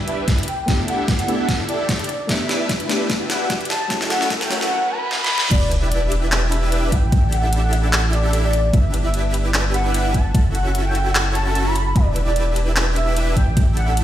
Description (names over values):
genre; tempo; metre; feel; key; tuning
future bass; 149 BPM; 4/4; half-time; unclear; A4 = 440 Hz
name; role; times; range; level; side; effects
supersaw chords; riff; 0.0-14.0 s; C#4 to E5; -25 LUFS; right 1 dB; ensemble chorus, sidechain pumping, low-pass filter
riser, reverse cymbal and sub drop; sound effects; 1.2-7.1 s; none; -30 LUFS; right 1 dB; none
warm velvety synth lead; melody; 0.1-13.9 s; D5 to B5; -25 LUFS; equal; chorus, sidechain pumping, digital delay
pop drum kit; drums; 0.1-14.0 s; crash cymbal, handclaps, hi-hat, snare drum; -23 LUFS; equal; overdrive, high-pass filter on snare, high-pass filter on hats, high-pass filter on cymbals, high-pass filter on room
electronic kick drum; drums; 0.3-13.7 s; none; -18 LUFS; equal; overdrive
soft round pluck; accompaniment; 0.7-4.6 s; F#3 to G4; -28 LUFS; left 2 dB; chorus, sidechain pumping, ping-pong delay
saturated sub bass; bass; 5.5-14.0 s; E1 to A1; -20 LUFS; equal; sidechain pumping
room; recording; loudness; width
light reverb; played on a big sound system in a bare room, large studio reverb, high-pass filter; -17 LUFS; side -12 dB against mid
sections
0.0-5.5 A section; 5.5-14.0 B section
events
build-up 0.0-5.5; drum fill 0.0-4.7, 5.1-5.5; filter sweep 0.0-5.5; reverse cymbal 4.7-5.5; drop 5.5-14.0; impact 5.5-7.1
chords
0.5 A7sus4; 3.9 F#m7; 5.5 Em7; 6.9 A7sus4; 8.7 G6; 10.3 F#m7; 12.0 Em7; 13.4 A7sus4